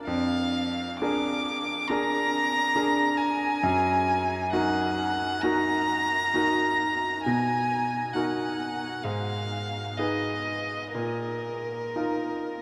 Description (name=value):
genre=classical, romantic duo for violin and grand piano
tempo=66 BPM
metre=4/4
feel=uneven beats, rubato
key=Eb minor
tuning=A4 = 440 Hz
part: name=bright grand piano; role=accompaniment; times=0.0-12.6 s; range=F2 to Cb5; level=-31 LUFS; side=equal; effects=none
part: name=rich violin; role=melody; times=0.1-12.6 s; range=Bb4 to D6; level=-29 LUFS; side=equal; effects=none
room=wet huge ambient reverb, RT60 8.0 s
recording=in a vast, echoing space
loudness=-27 LUFS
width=mono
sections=0.0-12.6 A section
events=none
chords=0.1 Bb7/F; 3.6 Ebm/Gb; 7.2 Bmaj7; 9.0 Fm7b5/Ab; 10.9 Bbsus4